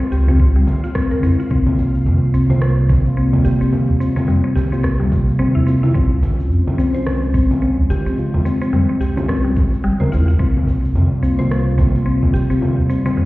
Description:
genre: organic downtempo.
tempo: 108 BPM.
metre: 4/4.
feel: swing 59% on 16ths.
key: unclear.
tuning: A4 = 440 Hz.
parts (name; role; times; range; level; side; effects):
warbly tape-like pad; sustained chords; 0.1-13.3 s; Bb2 to C5; -25 LUFS; equal; chorus, built-in reverb, sidechain pumping.
mallet-like synth pluck; arpeggios; 0.0-13.3 s; G3 to C5; -21 LUFS; left 2 dB; chorus, vintage 12-bit sampler grit, tape echo.
twinkling granular texture; texture; 0.0-1.5 s; F4 to F5; -44 LUFS; right 1 dB; built-in reverb.
warm sub bass; bass; 0.1-13.3 s; G1 to F2; -18 LUFS; equal; sidechain pumping.
electronic cabasa, congas and rim click; drums; 0.1-13.3 s; none; -24 LUFS; equal; none.
mellow tine electric piano; accompaniment; 0.3-12.9 s; C3 to Bb4; -20 LUFS; right 1 dB; phaser, sidechain pumping, tape echo.
udu; percussion; 0.3-12.9 s; none; -23 LUFS; right 1 dB; none.
electronic kick drum; drums; 0.4-11.9 s; none; -18 LUFS; equal; none.
room: moderate scoring stage reverb, RT60 1.9 s.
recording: heard muffled through a wall, stone room reverb, EQ.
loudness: -14 LUFS.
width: side -18 dB against mid.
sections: 0.0-1.5 A section; 1.5-13.3 A section.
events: none.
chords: 0.0 Dbmaj7; 1.5 C7sus4; 6.0 Dbmaj7; 10.4 C7sus4.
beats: 0.40 0.95 | 1.51 2.06 2.62 3.17 | 3.73 4.28 4.84 5.39 | 5.95 6.51 7.06 7.62 | 8.17 8.73 9.28 9.84 | 10.39 10.95 11.51 12.06 | 12.62 13.17.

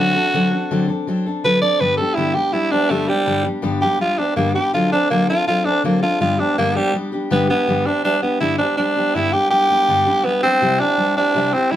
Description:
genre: rock.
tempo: 164 BPM.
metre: 4/4.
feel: straight.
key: G major.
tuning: A4 = 439 Hz.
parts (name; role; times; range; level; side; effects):
growling tenor saxophone; melody; 0.0-11.8 s; G3 to D5; -16 LUFS; right 1 dB; none.
picked steel-string acoustic guitar; accompaniment; 0.0-11.8 s; G2 to A4; -20 LUFS; left 2 dB; none.
room: light reverb.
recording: band playing live in one room.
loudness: -15 LUFS.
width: side -12 dB against mid.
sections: 0.0-7.7 A section; 7.7-11.8 B section.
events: tenor saxophone solo 0.0-7.7.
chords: 0.0 D7; 1.8 G; 4.7 D7; 6.2 G; 10.6 C.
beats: | 0.34 0.71 1.07 1.44 | 1.81 2.18 2.54 2.91 | 3.28 3.64 4.01 4.38 | 4.75 5.11 5.48 5.85 | 6.21 6.58 6.95 7.32 | 7.68 8.05 8.42 8.78 | 9.15 9.52 9.88 10.25 | 10.62 10.98 11.35 11.72.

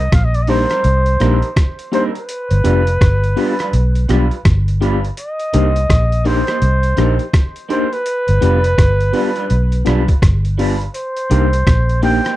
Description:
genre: lovers rock reggae.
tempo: 83 BPM.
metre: 4/4.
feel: swing 62% on 16ths.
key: C minor.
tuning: A4 = 440 Hz.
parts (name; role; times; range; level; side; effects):
breathy flugelhorn; melody; 0.0-12.4 s; B4 to G5; -20 LUFS; right 1 dB; tape echo.
vintage muted fingered electric bass; bass; 0.0-12.2 s; F1 to C2; -14 LUFS; equal; none.
trip hop sampler-style drum kit; drums; 0.1-12.4 s; hi-hat, kick drum, rim click; -16 LUFS; equal; overdrive.
mellow tine electric piano; accompaniment; 0.5-12.2 s; Bb3 to G4; -18 LUFS; left 2 dB; medium stereo tremolo.
electric guitar through a small old amp; stabs; 0.5-12.3 s; G3 to C5; -23 LUFS; right 4 dB; slapback echo.
room: little or no reverb.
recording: dry, close 1970s-style studio recording.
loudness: -13 LUFS.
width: side -15 dB against mid.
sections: 0.0-12.4 A section.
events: none.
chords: 0.0 Cm7; 2.3 G7; 5.2 Cm7; 8.1 G7; 10.9 Cm7.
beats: 0.12 0.84 1.57 | 2.29 3.01 3.73 4.45 | 5.17 5.89 6.62 7.34 | 8.06 8.78 9.50 10.22 | 10.94 11.66.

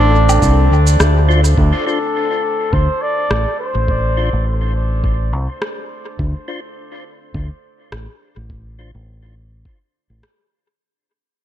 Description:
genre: ambient dub.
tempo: 104 BPM.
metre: 4/4.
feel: swing 54% on 16ths.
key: D minor.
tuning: A4 = 440 Hz.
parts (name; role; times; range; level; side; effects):
trumpet with bucket mute; melody; 0.0-4.7 s; D4 to D5; -20 LUFS; equal; dub echo.
deep dark ambient pad; sustained chords; 0.0-10.8 s; D4 to F5; -26 LUFS; equal; chorus, built-in reverb.
fingered electric bass; bass; 0.0-10.2 s; A1 to D2; -14 LUFS; equal; tube saturation.
electronic shaker, woodblock and rim click; drums; 0.3-10.4 s; none; -22 LUFS; equal; dub echo.
electronic kick drum; drums; 0.4-9.8 s; none; -20 LUFS; equal; none.
percussive tonewheel organ; stabs; 1.3-8.9 s; D4 to C5; -26 LUFS; left 2 dB; overdrive, chorus vibrato, fast rotary speaker, low-pass filter, dub echo.
room: light reverb, digital ambience.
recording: none.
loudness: -13 LUFS.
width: side -11 dB against mid.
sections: 0.0-1.6 A section; 1.6-10.8 B section.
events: fade-out 1.6-10.8.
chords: 0.0 Dm7.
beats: 0.42 1.00 | 1.58 2.15 2.73 3.31 | 3.88 4.46 5.04 5.61 | 6.19 6.77 7.34 7.92 | 8.50 9.08 9.65 10.23.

